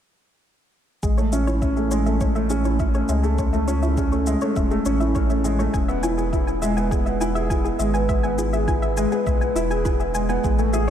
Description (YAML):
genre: piano and strings electronica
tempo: 102 BPM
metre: 4/4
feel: straight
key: A major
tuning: A4 = 441 Hz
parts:
  - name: soft round pluck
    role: arpeggios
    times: 1.0-10.9 s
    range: G#4 to G#5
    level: -30 LUFS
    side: left 2 dB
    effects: chorus, sidechain pumping, ping-pong delay
  - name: dark upright piano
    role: riff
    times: 1.0-10.9 s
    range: G#3 to G#4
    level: -22 LUFS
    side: equal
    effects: lush chorus, ping-pong delay
  - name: round analog bass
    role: bass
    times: 1.0-10.9 s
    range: E1 to C#2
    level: -24 LUFS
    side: equal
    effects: sidechain pumping
  - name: electronic kick drum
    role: drums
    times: 1.0-10.6 s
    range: none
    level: -24 LUFS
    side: equal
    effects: none
  - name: shaker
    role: drums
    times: 1.0-10.9 s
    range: none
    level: -39 LUFS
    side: left 2 dB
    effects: none
room: moderate cathedral reverb, RT60 5.1 s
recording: dreamy mix soaked in reverb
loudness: -19 LUFS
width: side -9 dB against mid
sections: 1.0-10.9 A section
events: none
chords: 1.0 Amaj7; 5.7 E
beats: | 1.03 1.62 2.21 2.80 | 3.38 3.97 4.56 5.15 | 5.74 6.33 6.91 7.50 | 8.09 8.68 9.27 9.86 | 10.44